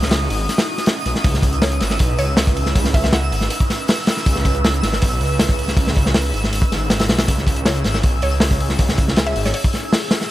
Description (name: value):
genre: drum and bass, jungle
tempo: 159 BPM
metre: 4/4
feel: straight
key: C# minor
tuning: A4 = 435 Hz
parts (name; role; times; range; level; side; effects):
- airy breathy pad; sustained chords; 0.0-10.3 s; C#4 to B4; -28 LUFS; right 2 dB; chorus, phaser
- detuned saw bass; bass; 0.0-9.5 s; G#1 to C#2; -20 LUFS; equal; none
- crunchy breakbeat drum kit; drums; 0.0-10.3 s; hi-hat, kick drum, snare drum; -17 LUFS; equal; none
- twinkling granular texture; texture; 0.0-10.3 s; D#6 to E6; -27 LUFS; equal; built-in reverb
- mallet-like synth pluck; melody; 1.6-3.5, 7.7-9.6 s; C#5 to F#5; -28 LUFS; equal; chorus, dub echo
room: light reverb, small room ambience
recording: none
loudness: -15 LUFS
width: side -15 dB against mid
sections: 0.0-10.3 A section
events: none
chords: 0.0 C#m9